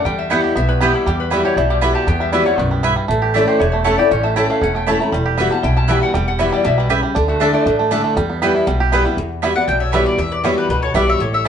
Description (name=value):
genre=bluegrass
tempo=237 BPM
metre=4/4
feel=straight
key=E dorian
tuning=A4 = 440 Hz
part: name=bluegrass banjo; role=melody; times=0.0-11.5 s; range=E3 to G4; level=-22 LUFS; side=right 5 dB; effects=none
part: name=lap resonator guitar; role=second line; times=0.0-11.5 s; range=E4 to B5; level=-22 LUFS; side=left 6 dB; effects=none
part: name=picked steel-string acoustic guitar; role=accompaniment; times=0.0-11.5 s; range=E2 to F#4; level=-19 LUFS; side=left 1 dB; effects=none
part: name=upright bass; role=bass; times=0.0-11.5 s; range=E1 to E2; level=-21 LUFS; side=equal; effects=none
part: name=mandolin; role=stabs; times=0.3-11.5 s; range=G3 to A5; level=-21 LUFS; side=right 4 dB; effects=none
part: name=mandolin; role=melody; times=9.6-11.5 s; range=B4 to G5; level=-19 LUFS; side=left 2 dB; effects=none
room=moderate large studio reverb, RT60 0.9 s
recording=band playing live in one room, nothing above 10.3 kHz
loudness=-14 LUFS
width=side -8 dB against mid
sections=0.0-1.1 A section; 1.1-9.2 A section; 9.2-11.5 B section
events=resonator guitar played with a steel bar solo 0.0-9.2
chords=0.1 Em; 1.1 Emadd9; 3.1 A; 5.1 Emadd9; 7.2 Dsus2; 8.2 Em; 9.2 Emadd9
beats=| 0.06 0.31 0.56 0.81 | 1.07 1.32 1.57 1.83 | 2.08 2.33 2.59 2.84 | 3.10 3.35 3.60 3.86 | 4.11 4.37 4.62 4.88 | 5.13 5.38 5.64 5.89 | 6.14 6.40 6.65 6.91 | 7.16 7.41 7.66 7.92 | 8.17 8.42 8.68 8.93 | 9.18 9.43 9.68 9.94 | 10.19 10.44 10.69 10.95 | 11.20 11.45